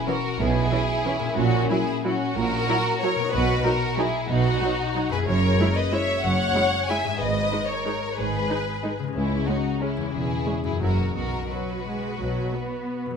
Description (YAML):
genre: classical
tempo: 162-198 BPM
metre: 3/4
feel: rubato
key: B major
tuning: A4 = 440 Hz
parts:
  - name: rich studio violin section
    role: melody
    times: 0.0-13.0 s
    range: C#4 to E5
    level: -29 LUFS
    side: left 2 dB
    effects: none
  - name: rich studio violin section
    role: second line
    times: 0.0-13.1 s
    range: E4 to G#5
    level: -28 LUFS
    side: left 2 dB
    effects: none
  - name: concert harp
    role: arpeggios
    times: 0.0-13.2 s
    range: E2 to G#4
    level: -30 LUFS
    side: left 9 dB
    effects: none
  - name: rich studio viola section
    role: accompaniment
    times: 0.1-13.2 s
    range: E3 to E4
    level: -30 LUFS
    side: right 2 dB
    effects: none
  - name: clear studio double bass section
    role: bass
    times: 0.4-12.5 s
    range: E1 to C#2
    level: -30 LUFS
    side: right 4 dB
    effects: none
  - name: warm studio cello section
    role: bass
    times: 0.4-12.5 s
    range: C#2 to B2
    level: -28 LUFS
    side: right 4 dB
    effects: none
room: moderate scoring stage reverb, RT60 1.5 s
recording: none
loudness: -22 LUFS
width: side -6 dB against mid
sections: 0.0-13.2 A section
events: none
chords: 0.0 C#m7/B; 1.4 F#7/A#; 3.3 B; 5.3 F#9; 7.2 G#m; 9.2 C#m; 10.1 C#m/E; 10.8 F#7; 11.2 B